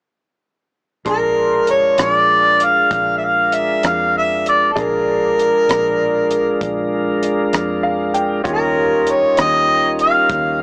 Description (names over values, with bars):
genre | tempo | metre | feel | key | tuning
slow blues | 65 BPM (dotted quarters) | 12/8 | straight | Bb mixolydian | A4 = 440 Hz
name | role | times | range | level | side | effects
tonewheel organ | sustained chords | 1.0-10.6 s | G3 to Bb4 | -24 LUFS | equal | slow rotary speaker
mellow harmonica | melody | 1.1-10.6 s | A4 to F5 | -16 LUFS | equal | none
bright upright piano | accompaniment | 1.1-10.6 s | D4 to C6 | -26 LUFS | equal | none
vintage muted fingered electric bass | bass | 1.1-10.6 s | Bb1 to F2 | -34 LUFS | equal | none
compact cocktail drum kit | drums | 1.1-10.4 s | hi-hat, kick drum, rim click | -25 LUFS | equal | none
room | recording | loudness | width
light reverb, small room ambience | small speaker sound | -16 LUFS | mono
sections
1.1-10.6 A section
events
upright piano fill 7.5-8.5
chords
1.1 Bb7; 8.5 Eb7